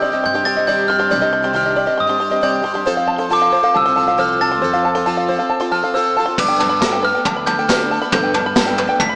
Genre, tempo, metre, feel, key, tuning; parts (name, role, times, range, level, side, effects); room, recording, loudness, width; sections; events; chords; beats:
indie folk with a building arrangement; 137 BPM; 4/4; straight; G mixolydian; A4 = 444 Hz
glockenspiel with soft plastic mallets; melody; 0.0-9.2 s; D6 to B6; -20 LUFS; equal
fingerpicked steel-string acoustic guitar; accompaniment; 0.0-1.1 s; C3 to G4; -38 LUFS; equal
picked plugged-in twelve-string acoustic guitar; accompaniment; 0.0-9.2 s; G2 to A4; -24 LUFS; equal
open-back banjo; arpeggios; 0.0-9.2 s; B4 to C6; -22 LUFS; equal; slapback echo
upright bass; bass; 0.3-9.2 s; C2 to G2; -33 LUFS; equal
vintage brush drum kit; drums; 6.4-9.1 s; crash cymbal, kick drum, snare drum, toms; -22 LUFS; equal
tambourine; percussion; 6.8-8.7 s; -35 LUFS; equal
wet scoring stage reverb, RT60 1.9 s, studio reverb; big arena sound, small speaker sound; -17 LUFS; mono
0.0-6.4 A section; 6.4-9.2 B section
0.0 Cmadd9; 2.9 F; 6.4 Gadd9
0.24 0.68 | 1.12 1.56 2.00 2.44 | 2.88 3.32 3.75 4.19 | 4.63 5.07 5.51 5.95 | 6.38 6.82 7.26 7.69 | 8.13 8.56 9.00